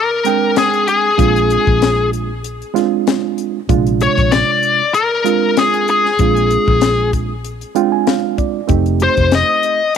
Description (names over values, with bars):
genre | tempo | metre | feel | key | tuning
straight-eighth soul blues | 96 BPM | 4/4 | swing 54% on 16ths | Bb mixolydian | A4 = 440 Hz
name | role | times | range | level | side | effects
smooth overdriven lead guitar | melody | 0.0-9.9 s | Ab4 to Eb5 | -14 LUFS | left 4 dB | none
reed electric piano | accompaniment | 0.2-9.8 s | C3 to Ab5 | -18 LUFS | right 14 dB | none
tight funk drum kit | drums | 0.2-10.0 s | hi-hat, kick drum, snare drum | -18 LUFS | left 4 dB | none
vintage muted fingered electric bass | bass | 1.2-9.4 s | F1 to Bb1 | -18 LUFS | left 1 dB | none
room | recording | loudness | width
light reverb, small room ambience | 1960s-style stereo | -12 LUFS | side -7 dB against mid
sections
0.0-10.0 A section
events
reed electric piano fill 7.4-8.7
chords
0.0 Bb7; 8.7 F7